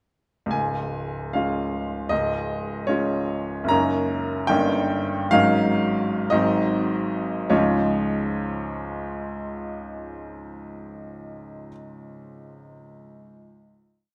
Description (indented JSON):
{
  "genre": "classical, romantic character piece for solo piano",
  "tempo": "48-79 BPM",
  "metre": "2/4",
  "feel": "rubato",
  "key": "Db major",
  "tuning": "A4 = 441 Hz",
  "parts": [
    { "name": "clear baby grand piano", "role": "solo", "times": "0.5-14.1 s", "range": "Db1 to Bb5", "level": "-25 LUFS", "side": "equal", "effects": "none" }
  ],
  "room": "moderate recital hall reverb, RT60 1.7 s",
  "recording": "close, detailed microphones",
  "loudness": "-24 LUFS",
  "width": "mono",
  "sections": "0.5-7.5 A section; 7.5-12.0 final chord",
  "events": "slowing down 2.9-7.5",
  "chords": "0.5 Db; 3.7 Ebm7/Gb; 4.5 Eb7/G; 5.3 Ab7sus4; 6.3 Ab7; 7.5 Db"
}